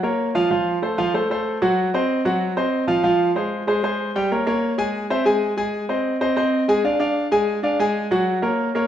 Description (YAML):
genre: jazz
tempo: 190 BPM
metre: 4/4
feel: straight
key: unclear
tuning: A4 = 440 Hz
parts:
  - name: clear concert grand piano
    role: solo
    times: 0.0-8.9 s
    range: F3 to Ab5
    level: -18 LUFS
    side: equal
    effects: none
room: wet recital hall reverb, RT60 1.4 s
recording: recorded in a church or concert hall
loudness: -18 LUFS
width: side -10 dB against mid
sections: 0.0-3.0 A section; 3.0-8.9 B section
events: none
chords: 0.0 Gb (rootless); 0.5 F; 1.8 Ebm69; 3.0 Fmadd9; 4.3 Absus24; 4.9 Caug; 5.6 Ab; 6.8 Ddim; 8.1 Gb